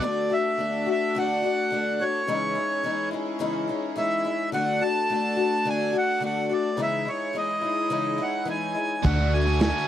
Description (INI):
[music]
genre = folk rock and heartland rock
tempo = 106 BPM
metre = 4/4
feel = straight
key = unclear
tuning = A4 = 442 Hz
[part]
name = accordion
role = melody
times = 0.0-9.9 s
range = C#5 to A5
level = -26 LUFS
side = right 1 dB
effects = none
[part]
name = picked old ladder-braced acoustic guitar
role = accompaniment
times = 0.0-9.9 s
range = C#3 to F#4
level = -27 LUFS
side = left 4 dB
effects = none
[part]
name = rich studio string section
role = sustained chords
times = 0.0-9.9 s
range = C#4 to D5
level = -33 LUFS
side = right 1 dB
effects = none
[part]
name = biting overdriven guitar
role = riff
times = 0.0, 9.0-9.9 s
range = D3 to F#4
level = -29 LUFS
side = right 3 dB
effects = none
[part]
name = vintage muted fingered electric bass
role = bass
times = 9.0-9.7 s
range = D2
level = -24 LUFS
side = right 1 dB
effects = none
[part]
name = vintage drum kit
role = drums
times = 9.0-9.7 s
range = crash cymbal, kick drum, snare drum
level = -26 LUFS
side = right 1 dB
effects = none
[sound]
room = little or no reverb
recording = dry, close 1970s-style studio recording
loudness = -23 LUFS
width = side -11 dB against mid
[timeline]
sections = 0.0-9.9 A section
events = none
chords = 0.0 D; 2.3 C#madd9; 4.5 D; 6.8 C#madd9; 9.0 D